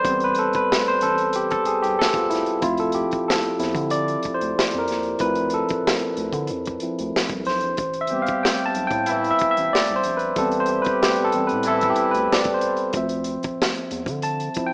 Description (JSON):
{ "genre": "R&B, neo-soul", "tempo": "93 BPM", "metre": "4/4", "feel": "swing 53% on 16ths", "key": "A minor", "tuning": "A4 = 440 Hz", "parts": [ { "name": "barky tine electric piano", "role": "accompaniment", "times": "0.0-14.7 s", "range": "F3 to A5", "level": "-24 LUFS", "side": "equal", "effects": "overdrive, subtle chorus" }, { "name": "crunchy breakbeat drum kit", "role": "drums", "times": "0.0-14.7 s", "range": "hi-hat, kick drum, snare drum", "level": "-28 LUFS", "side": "equal", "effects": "none" }, { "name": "round analog bass", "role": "bass", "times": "0.1-14.6 s", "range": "A1 to D3", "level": "-35 LUFS", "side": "equal", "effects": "none" }, { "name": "warm horn section", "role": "stabs", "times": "8.1-12.4 s", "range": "E3 to G4", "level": "-28 LUFS", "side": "equal", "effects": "none" } ], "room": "moderate lush hall reverb, RT60 2.0 s", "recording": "rough home demo mix, small speaker sound", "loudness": "-22 LUFS", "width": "mono", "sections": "0.0-14.7 A section", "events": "tine electric piano solo 0.0-14.7", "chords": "0.0 Am9; 2.6 Dm9; 7.8 Am9; 12.9 Dm9", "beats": "| 0.04 0.68 1.33 1.97 | 2.62 3.26 3.91 4.55 | 5.20 5.84 6.49 7.13 | 7.78 8.42 9.07 9.71 | 10.36 11.00 11.65 12.29 | 12.94 13.58 14.23" }